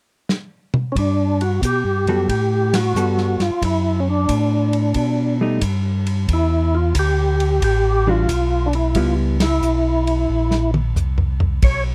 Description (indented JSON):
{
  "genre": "soul jazz organ trio",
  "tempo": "90 BPM",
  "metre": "4/4",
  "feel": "swing 67% on 8ths",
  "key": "G major",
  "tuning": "A4 = 437 Hz",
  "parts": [
    { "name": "warm soul drum kit", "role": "drums", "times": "0.3-11.8 s", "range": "hi-hat, kick drum, ride cymbal, snare drum, toms", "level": "-26 LUFS", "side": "equal", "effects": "none" },
    { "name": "percussive tonewheel organ", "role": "melody", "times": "0.9-11.8 s", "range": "C#4 to C#5", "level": "-22 LUFS", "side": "equal", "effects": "slow rotary speaker, overdrive, chorus vibrato" },
    { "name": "mellow tonewheel organ", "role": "bass", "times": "1.0-11.9 s", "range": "A1 to B2", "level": "-22 LUFS", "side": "equal", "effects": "chorus vibrato, slow rotary speaker" },
    { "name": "hollow-body jazz guitar", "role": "accompaniment", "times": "2.1-9.4 s", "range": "E3 to A4", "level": "-24 LUFS", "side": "equal", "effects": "none" }
  ],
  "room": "little or no reverb",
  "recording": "close, detailed microphones",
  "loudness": "-19 LUFS",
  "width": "mono",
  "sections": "1.0-11.9 A section",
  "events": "drum fill 0.3-1.0, 10.3-11.6; band accent 2.6-3.0, 9.3-9.6",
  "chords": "0.0 N.C.; 1.0 Gmaj9; 3.6 Dadd9/F#; 5.0 Baug7; 6.3 Em7; 9.0 C#m7b5; 10.3 Bbsus2",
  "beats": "0.29 | 0.96 1.62 2.29 2.96 | 3.62 4.29 4.96 5.63 | 6.29 6.96 7.63 8.29 | 8.96 9.63 10.30 10.96 | 11.63"
}